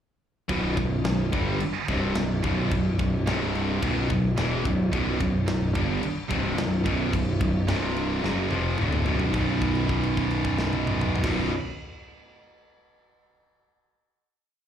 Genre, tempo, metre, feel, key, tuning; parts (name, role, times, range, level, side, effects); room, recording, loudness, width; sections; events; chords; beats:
heavy metal; 108 BPM; 4/4; straight; B minor; A4 = 440 Hz
heavy high-gain guitar; riff; 0.5-11.5 s; B1 to G3; -29 LUFS; right 7 dB; distortion, slapback echo
high-gain distorted guitar; riff; 0.5-11.5 s; B1 to G3; -29 LUFS; left 6 dB; distortion, slapback echo
fuzz picked electric bass; bass; 0.5-11.5 s; B0 to G1; -27 LUFS; equal; overdrive
tight metal drum kit; drums; 0.5-11.4 s; crash cymbal, kick drum, snare drum, toms; -31 LUFS; equal
small room ambience; live gig heard through the venue's PA, club reverb; -23 LUFS; side -9 dB against mid
0.5-9.4 riff; 9.4-11.6 final chord
drum fill 8.2-9.4; held note 9.4-11.2
0.5 Bm; 3.3 C5; 3.8 Bm; 7.7 C5; 8.2 Bm; 9.4 B5
| 0.48 1.04 1.60 2.15 | 2.71 3.26 3.82 4.37 | 4.92 5.48 6.03 6.58 | 7.14 7.69 8.24 8.80 | 9.35 9.91 10.46 11.02